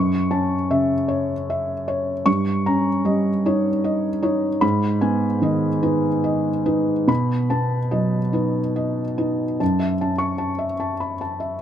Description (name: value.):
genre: neoclassical minimalist piano.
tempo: 47-51 BPM (dotted quarters).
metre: 6/8.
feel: rubato.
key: F# dorian.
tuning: A4 = 439 Hz.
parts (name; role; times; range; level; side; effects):
felt-muted upright piano; solo; 0.0-11.6 s; F#2 to C#6; -19 LUFS; equal; none.
room: light reverb.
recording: none.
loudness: -19 LUFS.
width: side -9 dB against mid.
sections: 0.0-9.6 A section; 9.6-11.6 B section.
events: none.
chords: 0.0 F#m7; 2.3 D#7/G; 4.6 G#m; 7.1 B7; 9.6 F#m7.